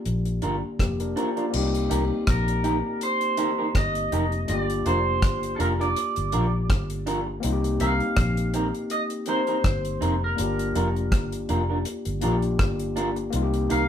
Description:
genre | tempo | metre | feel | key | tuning
lovers rock reggae | 81 BPM | 4/4 | swing 55% on 16ths | C minor | A4 = 440 Hz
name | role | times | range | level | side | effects
overdriven tine electric piano | accompaniment | 0.0-13.9 s | A3 to D5 | -29 LUFS | left 3 dB | none
vintage muted fingered electric bass | bass | 0.1-13.9 s | F1 to C2 | -27 LUFS | equal | none
deep reggae drum kit | drums | 0.1-13.9 s | crash cymbal, hi-hat, kick drum, rim click | -26 LUFS | equal | none
electric guitar through a small old amp | stabs | 0.4-13.8 s | C4 to Bb4 | -27 LUFS | right 2 dB | none
electric guitar through a small old amp | melody | 2.3-13.9 s | A4 to F5 | -28 LUFS | right 2 dB | none
room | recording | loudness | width
moderate studio reverb, RT60 0.6 s | band playing live in one room | -22 LUFS | side -9 dB against mid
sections
0.0-1.5 A section; 1.5-13.9 B section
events
none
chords
0.0 Gm7; 1.5 Cm7; 4.5 Gm7; 7.4 Cm7; 10.4 Gm7; 13.3 Cm7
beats
0.06 0.80 | 1.53 2.27 3.01 3.75 | 4.49 5.22 5.96 6.70 | 7.44 8.17 8.91 9.65 | 10.39 11.12 11.86 12.60 | 13.34

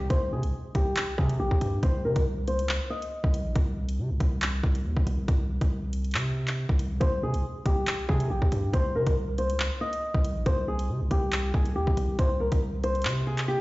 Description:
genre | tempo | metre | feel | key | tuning
hip hop, drill | 139 BPM | 4/4 | half-time | C phrygian | A4 = 440 Hz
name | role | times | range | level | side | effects
flamenco guitar | melody | 0.0-3.5, 7.0-13.6 s | G4 to Eb5 | -30 LUFS | left 1 dB | low-pass filter, tape echo
distorted 808-style bass | bass | 0.0-13.6 s | Bb1 to C3 | -28 LUFS | equal | distortion
drill drum kit | drums | 0.1-13.5 s | handclaps, hi-hat, kick drum | -26 LUFS | equal | vintage 12-bit sampler grit
room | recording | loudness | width
small room ambience | played on a big sound system in a bare room, stone room reverb, nothing above 7.6 kHz | -24 LUFS | side -19 dB against mid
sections
0.1-13.6 A section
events
filter sweep on nylon-string guitar 0.1-13.6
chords
none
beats
| 0.10 0.53 0.97 1.40 | 1.83 2.26 2.69 3.12 | 3.56 3.99 4.42 4.85 | 5.28 5.71 6.14 6.58 | 7.01 7.44 7.87 8.30 | 8.73 9.17 9.60 10.03 | 10.46 10.89 11.32 11.76 | 12.19 12.62 13.05 13.48

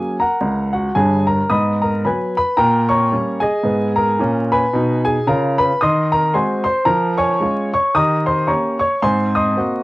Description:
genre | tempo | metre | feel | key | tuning
jazz, stride piano | 112 BPM | 4/4 | swing 59% on 8ths | unclear | A4 = 440 Hz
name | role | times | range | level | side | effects
warm upright piano | solo | 0.0-9.8 s | G1 to D#6 | -15 LUFS | equal | cassette tape
room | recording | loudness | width
moderate booth ambience, RT60 0.2 s | home recording on cassette, vinyl crackle | -15 LUFS | side -20 dB against mid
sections
0.0-9.8 A section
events
none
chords
0.0 F#; 1.5 G#m7; 2.6 Gdim/Bb; 3.7 G#m; 5.8 Ab7/Eb; 6.9 Db/F; 7.9 Eb7; 9.0 Ab9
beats
0.43 0.97 | 1.50 2.04 2.58 3.12 | 3.65 4.19 4.73 5.26 | 5.80 6.34 6.88 7.41 | 7.95 8.48 9.02 9.55

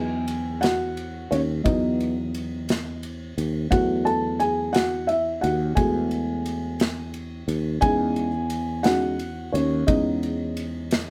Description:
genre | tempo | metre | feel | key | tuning
six-eight pop ballad | 58 BPM (dotted quarters) | 6/8 | straight | unclear | A4 = 439 Hz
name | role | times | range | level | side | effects
felt-muted upright piano | accompaniment | 0.0-11.1 s | F#3 to A5 | -27 LUFS | equal | none
fretless electric bass | bass | 0.0-11.1 s | D#2 to E2 | -29 LUFS | equal | none
modern studio drum kit | drums | 0.3-11.1 s | kick drum, ride cymbal, snare drum | -29 LUFS | equal | none
room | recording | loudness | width
light reverb | band playing live in one room | -24 LUFS | mono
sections
0.0-11.1 A section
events
felt piano solo 0.0-11.1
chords
0.0 B; 3.7 F#madd9; 7.8 C#sus2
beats
0.64 | 1.66 2.69 | 3.72 4.75 | 5.77 6.80 | 7.83 8.86 | 9.88 10.91

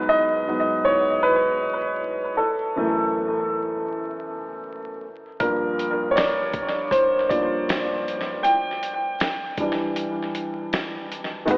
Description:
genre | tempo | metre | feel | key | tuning
lo-fi hip hop | 79 BPM | 4/4 | swing 60% on 16ths | unclear | A4 = 445 Hz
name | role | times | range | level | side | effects
warm upright piano | accompaniment | 0.0-11.6 s | F#2 to G5 | -21 LUFS | equal | cassette tape, low-pass filter, tape echo
dusty soul sampler-style drum kit | drums | 5.4-11.6 s | finger snaps, hi-hat, kick drum, snare drum | -28 LUFS | equal | tape echo
felt-muted upright piano | melody | 11.5-11.6 s | B4 | -19 LUFS | equal | low-pass filter
growling FM bass | bass | 11.5-11.6 s | G#1 | -31 LUFS | equal | none
tube shaker | percussion | 11.5-11.6 s | none | -48 LUFS | left 1 dB | none
room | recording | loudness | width
moderate echo chamber reverb, RT60 2.5 s | echo-heavy mix, vinyl crackle, AM radio sound | -21 LUFS | side -25 dB against mid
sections
0.0-11.5 A section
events
upright piano solo 0.0-11.5; break 10.0-11.5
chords
0.0 G#m7; 2.4 F#m7; 5.0 Gm7; 8.4 Em7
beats
0.09 0.85 1.61 | 2.37 3.13 3.88 4.64 | 5.40 6.16 6.92 7.68 | 8.44 9.20 9.96 10.72 | 11.48

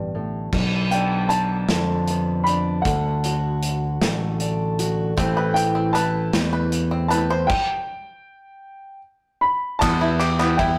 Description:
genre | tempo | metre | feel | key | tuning
indie folk with a building arrangement | 52 BPM (dotted quarters) | 6/8 | straight | unclear | A4 = 440 Hz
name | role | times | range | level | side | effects
fingerpicked steel-string acoustic guitar | accompaniment | 0.0-5.2 s | G2 to G4 | -30 LUFS | equal | none
picked electric bass | bass | 0.0-10.8 s | A1 to F2 | -26 LUFS | equal | none
loose indie drum kit | drums | 0.5-10.8 s | crash cymbal, hi-hat, kick drum, ride cymbal, snare drum | -28 LUFS | equal | none
dark upright piano | melody | 0.9-10.8 s | F#5 to B5 | -26 LUFS | equal | none
picked steel-string acoustic guitar | accompaniment | 5.2-10.8 s | A2 to B4 | -29 LUFS | equal | none
bluegrass banjo | arpeggios | 5.2-10.8 s | B3 to C5 | -27 LUFS | equal | none
group handclap | percussion | 9.8-10.6 s | none | -33 LUFS | equal | none
room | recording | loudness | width
moderate stone room reverb, RT60 1.0 s | rough rehearsal-room recording, tube saturation | -22 LUFS | mono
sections
0.5-9.8 A section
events
stop 7.5-9.8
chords
0.0 G/A; 0.5 Bdim; 2.9 D; 5.2 Amadd9; 7.5 N.C.; 9.8 Em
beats
| 0.53 1.69 | 2.85 4.01 | 5.18 6.34 | 7.50 8.65 | 9.81

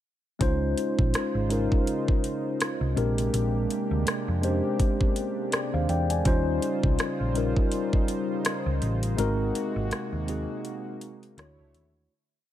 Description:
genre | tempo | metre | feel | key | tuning
contemporary R&B | 82 BPM | 4/4 | swing 58% on 16ths | Db major | A4 = 440 Hz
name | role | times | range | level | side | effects
mellow tine electric piano | accompaniment | 0.4-12.1 s | G3 to Ab5 | -28 LUFS | left 2 dB | slow stereo tremolo
warm analog pad | sustained chords | 0.4-12.1 s | C3 to C#5 | -34 LUFS | right 2 dB | chorus
hollow-body short-scale picked electric bass | bass | 0.4-12.1 s | Ab1 to F2 | -27 LUFS | equal | none
smooth R&B drum kit | drums | 0.4-11.9 s | hi-hat, kick drum, rim click | -27 LUFS | equal | none
room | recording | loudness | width
little or no reverb | none | -24 LUFS | side -12 dB against mid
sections
0.4-12.1 verse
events
break 9.2-12.1; fade-out 9.2-12.1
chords
0.4 Dbmaj9; 3.0 Bb13; 6.3 Eb13; 9.2 Ab9; 11.4 Dmaj9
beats
| 0.41 1.14 1.87 2.60 | 3.33 4.06 4.80 5.53 | 6.26 6.99 7.72 8.45 | 9.19 9.92 10.65 11.38

